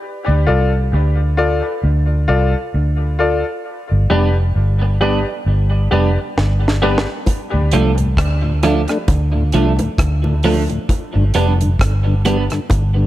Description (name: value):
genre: dub reggae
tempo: 66 BPM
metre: 4/4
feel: swing 57% on 16ths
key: D dorian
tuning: A4 = 443 Hz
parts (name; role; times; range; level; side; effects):
- vintage muted fingered electric bass; bass; 0.3-13.1 s; F1 to D2; -15 LUFS; equal; none
- clear upright piano; stabs; 0.5-7.1 s; F4 to D5; -21 LUFS; left 3 dB; dub echo
- clean electric guitar; accompaniment; 4.1-12.4 s; F3 to D4; -21 LUFS; right 4 dB; analog chorus, dub echo
- deep reggae drum kit; drums; 6.4-12.9 s; hi-hat, kick drum, rim click, snare drum; -19 LUFS; equal; none
- bongos; percussion; 7.3-12.9 s; none; -29 LUFS; equal; none
- mellow tonewheel organ; accompaniment; 7.5-13.1 s; D2 to D4; -22 LUFS; left 2 dB; overdrive, chorus vibrato, slow rotary speaker, dub echo
room: light reverb, small room ambience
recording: none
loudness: -14 LUFS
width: side -14 dB against mid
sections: 0.0-7.3 A section; 7.3-13.1 B section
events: break 0.0-7.3; drum fill 6.4-7.3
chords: 0.0 Dm; 3.6 G; 7.3 Dm; 10.9 G